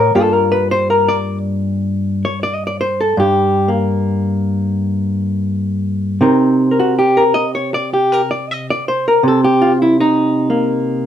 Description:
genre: solo jazz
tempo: 79 BPM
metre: 4/4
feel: swing 67% on 8ths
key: G minor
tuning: A4 = 441 Hz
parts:
  - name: hollow-body jazz guitar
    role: solo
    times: 0.0-11.1 s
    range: G2 to Eb5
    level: -13 LUFS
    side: equal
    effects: none
room: wet studio ambience, RT60 0.5 s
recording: none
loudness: -13 LUFS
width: side -10 dB against mid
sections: 0.0-11.1 A section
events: hollow-body jazz guitar solo 0.0-11.1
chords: 0.2 Gm7; 6.2 Cm7

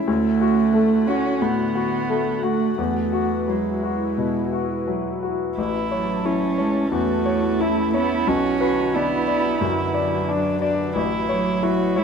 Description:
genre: neoclassical piano and strings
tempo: 89 BPM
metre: 4/4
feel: rubato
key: A major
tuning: A4 = 440 Hz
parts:
  - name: dark cello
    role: second line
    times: 0.0-12.0 s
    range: F#3 to C#4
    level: -23 LUFS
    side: right 6 dB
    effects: none
  - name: clear grand piano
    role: accompaniment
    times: 0.0-12.0 s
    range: A1 to D5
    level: -23 LUFS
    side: left 5 dB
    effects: none
  - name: glassy FM pad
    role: sustained chords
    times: 0.0-12.0 s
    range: D3 to A5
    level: -28 LUFS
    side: equal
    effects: ensemble chorus, built-in reverb
  - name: warm viola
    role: accompaniment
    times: 5.6-12.0 s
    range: C#4 to F#4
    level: -25 LUFS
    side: right 3 dB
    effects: none
room: light reverb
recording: minimal, uncompressed stereo recording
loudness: -19 LUFS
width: side -6 dB against mid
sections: 0.0-5.6 A section; 5.6-12.0 B section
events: none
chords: 0.1 D; 2.8 Eadd9; 5.6 A; 8.3 Bm; 11.0 A

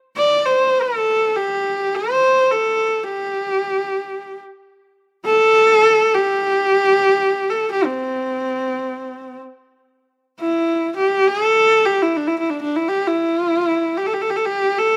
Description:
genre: mongolian traditional, Mongolian folk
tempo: free time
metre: none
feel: none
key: unclear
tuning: A4 = 440 Hz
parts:
  - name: bright horsehead fiddle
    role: solo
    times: 0.2-15.0 s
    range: C4 to D5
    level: -18 LUFS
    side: equal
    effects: none
room: light reverb, small room ambience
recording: rough home demo mix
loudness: -18 LUFS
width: mono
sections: 0.0-9.9 A section; 9.9-15.0 A section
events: none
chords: none

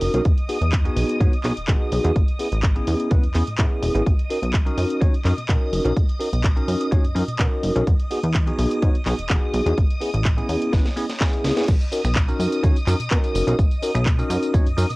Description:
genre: filtered disco house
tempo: 126 BPM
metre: 4/4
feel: straight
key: B major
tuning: A4 = 435 Hz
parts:
  - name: bell-like tine electric piano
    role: accompaniment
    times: 0.0-14.9 s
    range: B3 to C#5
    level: -24 LUFS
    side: equal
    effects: medium stereo tremolo, phaser, sidechain pumping, low-pass filter, cassette tape
  - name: string machine, full ensemble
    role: sustained chords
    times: 0.0-15.0 s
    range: D#6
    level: -33 LUFS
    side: equal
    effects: phaser, ensemble chorus, sidechain pumping, low-pass filter, cassette tape
  - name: plucky analog bass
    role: bass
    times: 0.0-15.0 s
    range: E1 to B2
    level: -22 LUFS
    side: equal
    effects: tube saturation, sidechain pumping, low-pass filter
  - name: house drum kit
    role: drums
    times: 0.0-15.0 s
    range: crash cymbal, finger snaps, handclaps, hi-hat, snare drum, tambourine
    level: -30 LUFS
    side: equal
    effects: small room ambience, sidechain pumping on hats, sidechain pumping on cymbals, sidechain pumping on perc
  - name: electronic kick drum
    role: drums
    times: 0.3-14.6 s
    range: none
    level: -19 LUFS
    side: equal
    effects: small room ambience
room: little or no reverb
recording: home recording on cassette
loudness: -18 LUFS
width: side -23 dB against mid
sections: 0.0-11.7 A section; 11.7-15.0 B section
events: drum fill 10.7-11.7; drop 11.7-15.0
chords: 0.3 Emaj7; 2.2 Amaj7; 4.1 Bmaj7; 7.9 Emaj7; 9.8 Amaj7; 11.7 Bmaj7

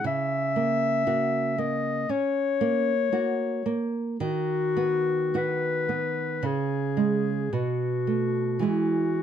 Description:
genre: romantic duo for clarinet and classical guitar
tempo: 50-61 BPM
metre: 4/4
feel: rubato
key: unclear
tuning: A4 = 440 Hz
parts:
  - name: warm clarinet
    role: melody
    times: 0.0-9.2 s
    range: F#4 to E5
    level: -26 LUFS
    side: left 5 dB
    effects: none
  - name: nylon-string guitar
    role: accompaniment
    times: 0.0-9.2 s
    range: B2 to F#4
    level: -27 LUFS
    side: right 5 dB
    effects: none
room: moderate small room reverb, RT60 0.5 s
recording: dark, warm production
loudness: -24 LUFS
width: side -9 dB against mid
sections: 0.0-9.2 A section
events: none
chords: 0.1 F#7/C#; 4.2 B/D#; 6.4 C#5; 7.5 B5; 8.7 E

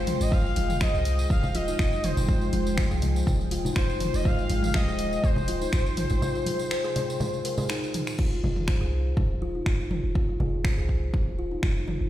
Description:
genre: afro house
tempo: 122 BPM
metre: 4/4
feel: swing 53% on 16ths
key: F minor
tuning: A4 = 441 Hz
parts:
  - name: expressive portamento lead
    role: melody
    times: 0.0-7.7 s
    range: C5 to F5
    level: -31 LUFS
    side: left 2 dB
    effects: wide subtle chorus, ping-pong delay
  - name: ethereal airy pad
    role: sustained chords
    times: 0.0-8.2 s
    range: C3 to G5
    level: -35 LUFS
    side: equal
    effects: ensemble chorus, built-in reverb, phaser, sidechain pumping
  - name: kalimba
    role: arpeggios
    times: 0.0-11.8 s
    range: Eb4 to C5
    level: -33 LUFS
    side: left 1 dB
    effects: sidechain pumping, ping-pong delay
  - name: deep house drum kit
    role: drums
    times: 0.1-12.0 s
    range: crash cymbal, finger snaps, hi-hat, toms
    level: -34 LUFS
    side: right 1 dB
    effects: studio reverb
  - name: congas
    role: percussion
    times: 0.1-12.0 s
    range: none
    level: -33 LUFS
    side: left 1 dB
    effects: none
  - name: warm 808-style bass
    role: bass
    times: 0.2-12.1 s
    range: Eb1 to C2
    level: -28 LUFS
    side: equal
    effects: sidechain pumping
  - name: tambourine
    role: percussion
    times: 0.2-8.2 s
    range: none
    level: -43 LUFS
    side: right 1 dB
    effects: none
  - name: electronic kick drum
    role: drums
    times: 0.3-11.7 s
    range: none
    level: -25 LUFS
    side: equal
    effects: studio reverb
room: light reverb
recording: played on a big sound system in a bare room, stone room reverb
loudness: -23 LUFS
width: side -13 dB against mid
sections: 0.0-8.2 A section; 8.2-12.1 B section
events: drop 0.0-8.2; break 6.2-8.2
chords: 0.0 Fmadd9; 4.3 Abmaj7; 8.2 F5

